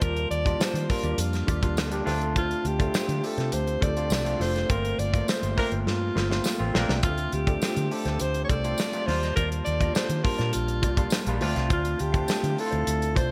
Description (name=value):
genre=polished 1980s jazz-funk pop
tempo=103 BPM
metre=4/4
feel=straight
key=unclear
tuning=A4 = 440 Hz
part: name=warm alto saxophone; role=melody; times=0.0-13.3 s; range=F4 to D5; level=-33 LUFS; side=equal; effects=none
part: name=overdriven tine electric piano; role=accompaniment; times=0.0-13.3 s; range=F#3 to G4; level=-33 LUFS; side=equal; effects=lush chorus
part: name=mellow electric guitar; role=riff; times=0.0-13.3 s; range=F4 to F5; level=-40 LUFS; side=equal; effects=none
part: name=vintage muted fingered electric bass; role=bass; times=0.0-13.3 s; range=F1 to Eb3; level=-31 LUFS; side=equal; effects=none
part: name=modern studio drum kit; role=drums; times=0.0-13.3 s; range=hi-hat, kick drum, snare drum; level=-30 LUFS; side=equal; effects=gated reverb
part: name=tambourine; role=percussion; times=0.6-12.4 s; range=none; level=-41 LUFS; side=equal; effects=none
part: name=warm horn section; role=second line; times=5.6-6.9 s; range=F3 to Bb4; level=-37 LUFS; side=equal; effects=none
room=light reverb, small room ambience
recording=bright 1980s-style digital production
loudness=-26 LUFS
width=mono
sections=0.0-13.3 A section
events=band accent 4.7-7.0; drum fill 5.9-7.0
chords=0.0 Ebmaj9; 2.1 Dm7; 4.7 Gm11; 7.0 Dm7; 9.1 Ebmaj9; 11.4 Dm7